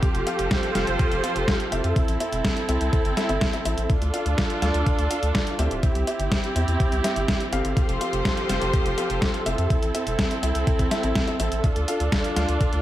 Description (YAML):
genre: italo disco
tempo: 124 BPM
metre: 4/4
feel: straight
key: F major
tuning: A4 = 440 Hz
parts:
  - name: rich studio string section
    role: sustained chords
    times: 0.0-12.8 s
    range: F3 to C5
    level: -26 LUFS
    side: right 2 dB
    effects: none
  - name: warm concert grand piano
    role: stabs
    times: 0.0-12.8 s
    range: C4 to F5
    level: -29 LUFS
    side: left 1 dB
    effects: ping-pong delay
  - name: detuned 8-bit digital drum machine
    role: drums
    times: 0.0-12.8 s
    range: hi-hat, snare drum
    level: -29 LUFS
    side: equal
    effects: none
  - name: electronic kick drum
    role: drums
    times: 0.0-12.7 s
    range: none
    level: -24 LUFS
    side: equal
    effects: none
  - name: round analog bass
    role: bass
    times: 0.1-12.8 s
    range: D1 to F2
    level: -26 LUFS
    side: equal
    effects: none
room: light reverb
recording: vinyl crackle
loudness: -21 LUFS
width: side -13 dB against mid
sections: 0.0-12.8 A section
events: none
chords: 0.0 Fadd9; 2.0 Am; 3.9 Dm; 5.8 C; 7.8 Fadd9; 9.7 Am; 11.6 Dm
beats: | 0.03 0.51 0.99 1.48 | 1.96 2.44 2.93 3.41 | 3.90 4.38 4.87 5.35 | 5.83 6.32 6.80 7.28 | 7.77 8.25 8.74 9.22 | 9.70 10.19 10.67 11.15 | 11.64 12.12 12.61